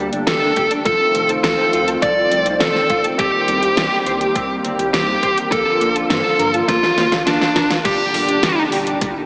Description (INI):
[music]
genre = synthwave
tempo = 103 BPM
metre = 4/4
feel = straight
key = G minor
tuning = A4 = 440 Hz
[part]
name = warm analog pad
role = sustained chords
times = 0.0-9.3 s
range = Bb2 to G4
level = -25 LUFS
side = equal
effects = subtle chorus, sidechain pumping
[part]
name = electric guitar at the edge of break-up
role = riff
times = 0.0-9.1 s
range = F3 to C5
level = -27 LUFS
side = equal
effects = lush chorus, digital delay, slapback echo
[part]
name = round analog bass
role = bass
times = 0.0-9.3 s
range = F1 to G2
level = -34 LUFS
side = equal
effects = tube saturation, sidechain pumping
[part]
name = pop drum kit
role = drums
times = 0.1-9.1 s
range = crash cymbal, hi-hat, snare drum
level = -25 LUFS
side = equal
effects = none
[part]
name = fuzz lead guitar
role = melody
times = 0.3-8.6 s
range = D4 to D5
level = -19 LUFS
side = equal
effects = distortion, digital delay, slapback echo
[part]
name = electronic kick drum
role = drums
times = 0.6-9.1 s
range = none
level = -28 LUFS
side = equal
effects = none
[sound]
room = wet lush hall reverb, RT60 2.7 s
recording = big arena sound, small speaker sound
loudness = -17 LUFS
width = mono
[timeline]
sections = 0.0-7.8 A section; 7.8-9.3 B section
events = drum fill 6.7-7.8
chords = 0.0 Gmadd9; 0.9 F7; 3.2 Cm7; 5.5 Bb; 7.8 Gm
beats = 0.28 | 0.86 1.44 2.02 2.61 | 3.19 3.77 4.35 4.94 | 5.52 6.10 6.68 7.27 | 7.85 8.43 9.02